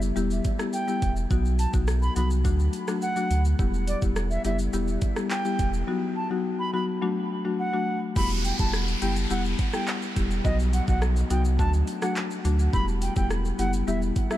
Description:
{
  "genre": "dancehall",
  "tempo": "105 BPM",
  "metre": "4/4",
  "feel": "straight",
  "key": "E minor",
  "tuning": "A4 = 440 Hz",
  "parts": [
    { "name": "buzzing marimba with medium mallets", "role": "accompaniment", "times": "0.0-14.4 s", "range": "F#3 to G4", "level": "-28 LUFS", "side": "left 4 dB", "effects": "sidechain pumping" },
    { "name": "sub bass with octave", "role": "bass", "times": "0.0-14.1 s", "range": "E1 to D2", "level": "-25 LUFS", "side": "right 1 dB", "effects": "none" },
    { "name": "island pop drum kit", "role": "drums", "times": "0.0-14.4 s", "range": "crash cymbal, handclaps, hi-hat, kick drum, rim click, shaker", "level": "-30 LUFS", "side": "right 1 dB", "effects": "overdrive" },
    { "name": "bright reedy baroque flute", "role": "melody", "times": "0.7-14.4 s", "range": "D5 to B5", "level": "-32 LUFS", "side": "right 2 dB", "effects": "diffuse ambient delay" },
    { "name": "downlifter", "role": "sound effects", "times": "8.2-12.7 s", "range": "none", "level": "-35 LUFS", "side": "right 1 dB", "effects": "none" }
  ],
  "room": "light reverb",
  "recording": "none",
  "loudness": "-23 LUFS",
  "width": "side -13 dB against mid",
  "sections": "0.0-8.2 A section; 8.2-14.4 B section",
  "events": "none",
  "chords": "0.0 Em; 1.3 B; 2.4 D; 3.6 Em; 5.9 B; 7.0 D; 8.2 Em; 10.4 B; 11.6 D; 12.7 Em"
}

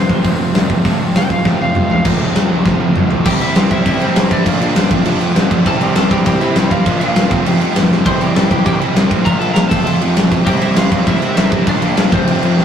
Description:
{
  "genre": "punk rock",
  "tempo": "200 BPM",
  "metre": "4/4",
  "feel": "straight",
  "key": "unclear",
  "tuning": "A4 = 439 Hz",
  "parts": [
    { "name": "lightly driven lead guitar", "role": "melody", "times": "0.0-12.6 s", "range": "C4 to C6", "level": "-21 LUFS", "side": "equal", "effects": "none" },
    { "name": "crunchy overdriven guitar", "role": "riff", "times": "0.0-12.6 s", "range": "F2 to C4", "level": "-19 LUFS", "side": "right 1 dB", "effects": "none" },
    { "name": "distorted electric guitar", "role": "riff", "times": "0.0-12.6 s", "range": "F2 to F4", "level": "-22 LUFS", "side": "equal", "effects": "overdrive" },
    { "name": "fuzz picked electric bass", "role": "bass", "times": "0.0-12.6 s", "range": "E1 to C3", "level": "-22 LUFS", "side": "equal", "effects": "overdrive" },
    { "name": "big rock drum kit", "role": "drums", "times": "0.1-12.6 s", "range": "crash cymbal, hi-hat, kick drum, snare drum, toms", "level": "-14 LUFS", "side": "equal", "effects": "none" }
  ],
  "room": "moderate small room reverb, RT60 0.5 s",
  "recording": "rough rehearsal-room recording",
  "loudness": "-11 LUFS",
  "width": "side -8 dB against mid",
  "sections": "0.0-2.1 A section; 2.1-3.3 B section; 3.3-12.6 C section",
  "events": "lead electric guitar solo 0.0-2.1; drum fill 1.4-2.1, 2.7-3.3, 7.9",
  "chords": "0.0 F; 3.3 C; 4.5 Bb; 4.9 F; 5.7 C; 6.9 Bb; 7.3 F; 8.1 C; 9.3 Bb; 9.7 F; 10.5 C; 11.7 Bb; 12.1 F"
}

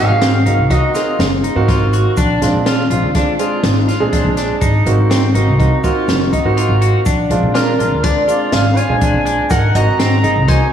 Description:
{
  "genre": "progressive instrumental, band music in an uneven meter",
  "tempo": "123 BPM",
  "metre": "5/4",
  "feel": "straight",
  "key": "unclear",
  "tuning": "A4 = 440 Hz",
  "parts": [
    { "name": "lead with added fifth", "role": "melody", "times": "0.0-1.2, 7.6-10.7 s", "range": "Bb4 to Bb5", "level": "-18 LUFS", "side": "right 1 dB", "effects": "chorus, slapback echo" },
    { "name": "bluegrass banjo", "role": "second line", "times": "0.0-1.2, 7.5-10.7 s", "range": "D4 to Eb5", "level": "-25 LUFS", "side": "left 1 dB", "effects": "slapback echo" },
    { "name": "warm grand piano", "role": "accompaniment", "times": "0.0-10.7 s", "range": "Ab3 to Gb5", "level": "-20 LUFS", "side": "right 3 dB", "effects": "slapback echo" },
    { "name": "electric guitar at the edge of break-up", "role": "arpeggios", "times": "0.0-10.7 s", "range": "C4 to Gb4", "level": "-20 LUFS", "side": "left 2 dB", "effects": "wide subtle chorus, slapback echo" },
    { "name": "upright bass", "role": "bass", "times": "0.0-10.6 s", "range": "Gb1 to Bb2", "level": "-16 LUFS", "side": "equal", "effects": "none" },
    { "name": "open jazz drum kit", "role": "drums", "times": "0.2-10.6 s", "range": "hi-hat, kick drum, snare drum", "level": "-18 LUFS", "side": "equal", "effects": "none" },
    { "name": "egg shaker", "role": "percussion", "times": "0.7-10.6 s", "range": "none", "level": "-38 LUFS", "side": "right 6 dB", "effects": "none" }
  ],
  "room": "moderate concert hall reverb, RT60 2.0 s",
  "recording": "big arena sound",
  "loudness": "-12 LUFS",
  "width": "side -9 dB against mid",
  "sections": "0.0-10.7 A section",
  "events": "grand piano fill 6.1-7.1",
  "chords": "0.0 Ab9; 2.2 Bb7; 4.6 Ab9; 7.1 Bb7; 9.5 Ab9"
}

